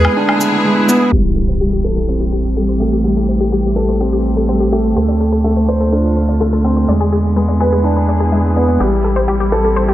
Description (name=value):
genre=piano and strings electronica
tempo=125 BPM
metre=4/4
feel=straight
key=A minor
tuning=A4 = 441 Hz
part: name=clear viola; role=melody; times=0.0-0.6 s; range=G#4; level=-24 LUFS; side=left 2 dB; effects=none
part: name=rich studio string section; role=sustained chords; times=0.0-9.9 s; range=D3 to A4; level=-22 LUFS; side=equal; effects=none
part: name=felt-muted upright piano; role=riff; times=0.0-9.9 s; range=G3 to C5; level=-15 LUFS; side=equal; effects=digital delay
part: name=round analog bass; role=bass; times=0.0-9.9 s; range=A1 to E2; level=-17 LUFS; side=equal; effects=none
part: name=woodblock and shaker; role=drums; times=0.0-1.0 s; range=none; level=-20 LUFS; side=left 1 dB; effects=none
part: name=analog pluck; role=arpeggios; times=1.1-9.9 s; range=G4 to E5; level=-23 LUFS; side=left 3 dB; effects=chorus, digital delay
part: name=impact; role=sound effects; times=1.1-3.0 s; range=none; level=-20 LUFS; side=equal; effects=none
room=moderate recital hall reverb, RT60 1.7 s, digital ambience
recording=low-pass filter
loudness=-12 LUFS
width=side -14 dB against mid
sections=0.0-1.1 A section; 1.1-9.9 B section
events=break 0.2-1.1; impact 1.1-3.0; filter sweep on synth arpeggio sound 1.1-9.9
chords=0.0 E7; 1.1 Am7; 5.0 Dm7; 6.9 E7; 8.8 Am7